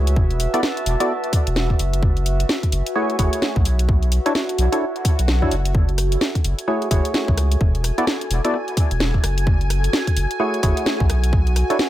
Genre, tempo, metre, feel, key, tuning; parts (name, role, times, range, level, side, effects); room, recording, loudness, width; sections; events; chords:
UK garage, two-step garage; 129 BPM; 4/4; swing 60% on 16ths; F# minor; A4 = 440 Hz
percussive organ stab; stabs; 0.0-11.8 s; A3 to D5; -24 LUFS; equal; analog chorus, dub echo
saturated sub bass; bass; 0.0-11.6 s; E1 to C#2; -19 LUFS; equal; sidechain pumping
warbly tape-like pad; texture; 0.0-11.9 s; F#4 to A5; -28 LUFS; right 1 dB; chorus, built-in reverb, sidechain pumping
garage drum kit; drums; 0.1-11.9 s; hi-hat, rim click, snare drum; -24 LUFS; equal
electronic kick drum; drums; 0.2-11.4 s; -19 LUFS; equal
swell; sound effects; 5.0-5.7 s; -32 LUFS; equal
soft string machine; sustained chords; 6.6-11.9 s; G#5; -32 LUFS; right 1 dB; phaser, ensemble chorus, sidechain pumping
light reverb, digital ambience; echo-heavy mix; -17 LUFS; side -14 dB against mid
0.0-11.9 A section
swell 5.0-5.7
0.2 E9sus4; 2.0 F#m9; 3.7 Bm11; 5.7 F#m9; 7.6 E9sus4; 9.5 F#m9; 11.1 Bm11